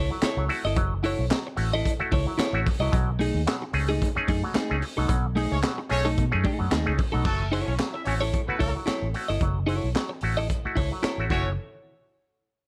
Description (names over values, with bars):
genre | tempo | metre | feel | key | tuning
funk | 111 BPM | 4/4 | swing 56% on 16ths | F# dorian | A4 = 440 Hz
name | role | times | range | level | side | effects
semi-hollow electric guitar | accompaniment | 0.0-11.5 s | A3 to D#5 | -32 LUFS | equal | spring reverb, plate reverb
vintage muted fingered electric bass | bass | 0.0-11.6 s | F#1 to B2 | -30 LUFS | equal | none
auto-wah clav | stabs | 0.1-11.5 s | B2 to G#4 | -34 LUFS | equal | none
crunchy breakbeat drum kit | drums | 0.2-11.4 s | crash cymbal, handclaps, hi-hat, kick drum, snare drum | -31 LUFS | equal | none
warm horn section | second line | 5.5-11.5 s | A3 to E5 | -33 LUFS | equal | plate reverb
room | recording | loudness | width
light reverb | none | -26 LUFS | mono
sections
0.0-7.3 A section; 7.3-11.6 B section; 11.6-12.7 C section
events
band accent 5.1-7.3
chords
0.0 F#m7; 2.9 B13; 7.3 F#m7; 11.6 N.C.